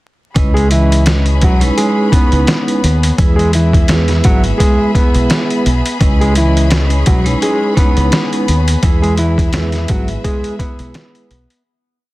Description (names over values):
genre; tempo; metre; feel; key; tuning
hip hop, boom-bap hip-hop; 85 BPM; 4/4; swing 55% on 16ths; C# minor; A4 = 440 Hz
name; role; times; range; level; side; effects
vibraphone with medium hard mallets; accompaniment; 0.3-11.3 s; G#3 to D#5; -19 LUFS; right 1 dB; none
dark studio string section; sustained chords; 0.4-11.6 s; G#4 to B5; -25 LUFS; left 3 dB; none
deep dub fingered electric bass; bass; 0.4-11.5 s; G#1 to E2; -14 LUFS; equal; none
trip hop sampler-style drum kit; drums; 0.4-11.6 s; hi-hat, kick drum, snare drum; -14 LUFS; equal; overdrive
mellow electric guitar; melody; 0.5-11.6 s; E3 to B4; -17 LUFS; equal; spring reverb, ping-pong delay
room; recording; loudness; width
digital ambience; dense, heavily limited modern master, vinyl crackle; -10 LUFS; side -18 dB against mid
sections
0.4-11.7 hook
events
fade-out 8.8-11.7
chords
0.4 C#m7; 3.2 E; 6.0 C#m7; 8.8 E